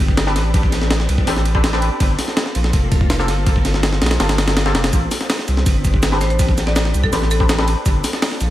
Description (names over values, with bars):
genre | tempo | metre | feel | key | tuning
drum and bass, jungle | 164 BPM | 4/4 | straight | unclear | A4 = 443 Hz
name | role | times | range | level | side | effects
soft string machine | sustained chords | 0.0-8.5 s | Bb3 to A4 | -27 LUFS | equal | ensemble chorus, vintage 12-bit sampler grit
saturated sub bass | bass | 0.0-8.5 s | F1 to C2 | -18 LUFS | equal | none
breakbeat sampler-style drum kit | drums | 0.1-8.5 s | hi-hat, kick drum, ride cymbal, snare drum | -18 LUFS | equal | studio reverb
orchestra-hit-like synth stab | stabs | 0.3-7.6 s | Bb3 to B4 | -25 LUFS | left 1 dB | built-in reverb, dub echo
breakbeat sampler-style drum kit | drums | 4.9-8.5 s | hi-hat, shaker, snare drum | -29 LUFS | right 1 dB | high-pass filter on perc, studio reverb, high-pass filter on snare, high-pass filter on hats
marimba with hard mallets | melody | 6.2-7.7 s | A4 to D5 | -25 LUFS | equal | dub echo
room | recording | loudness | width
light reverb | echo-heavy mix, vinyl crackle | -14 LUFS | side -14 dB against mid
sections
0.0-8.5 A section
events
none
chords
0.0 Am11; 2.0 Gm11; 4.9 Am11; 7.9 Gm11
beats
0.17 | 0.54 0.91 1.27 1.64 | 2.00 2.37 2.74 3.10 | 3.47 3.83 4.20 4.57 | 4.93 5.30 5.66 6.03 | 6.39 6.76 7.13 7.49 | 7.86 8.22